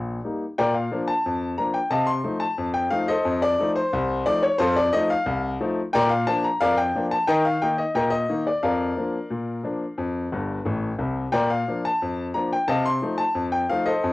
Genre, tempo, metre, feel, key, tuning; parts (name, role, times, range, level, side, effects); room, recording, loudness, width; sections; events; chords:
ragtime piano; 89 BPM; 2/4; straight; Bb major; A4 = 441 Hz
clear grand piano; solo; 0.0-14.1 s; G1 to C6; -21 LUFS; left 2 dB; cassette tape
moderate studio ambience, RT60 0.5 s; home recording on cassette; -21 LUFS; side -19 dB against mid
0.6-14.1 A section
grand piano fill 10.3-11.3
0.0 Eb; 0.6 Bb; 1.9 F7/C; 3.3 F7; 5.9 Bb; 7.3 Eb5; 8.6 Bb/F; 10.0 F; 11.3 Bb; 12.7 F7/C